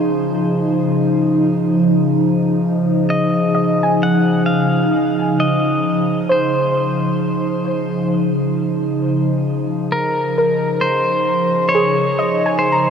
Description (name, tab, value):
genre	ambient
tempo	66 BPM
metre	4/4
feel	straight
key	Db major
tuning	A4 = 440 Hz
part	pedal steel guitar	melody	0.0-12.9 s	Bb4 to Gb5	-20 LUFS	left 1 dB	shimmer reverb, diffuse ambient delay
part	warbly tape-like pad	sustained chords	0.0-12.9 s	Db3 to Eb5	-16 LUFS	equal	chorus, built-in reverb, phaser, shimmer reverb
part	soft round pluck	arpeggios	3.5-12.9 s	Ab4 to Bb5	-21 LUFS	equal	analog chorus, shimmer reverb, diffuse ambient delay
room	wet huge ambient reverb, RT60 7.1 s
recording	cassette tape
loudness	-14 LUFS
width	side -7 dB against mid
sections	0.0-12.9 A section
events	fade-in on pedal steel guitar 0.0-12.9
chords	0.0 Dbmaj9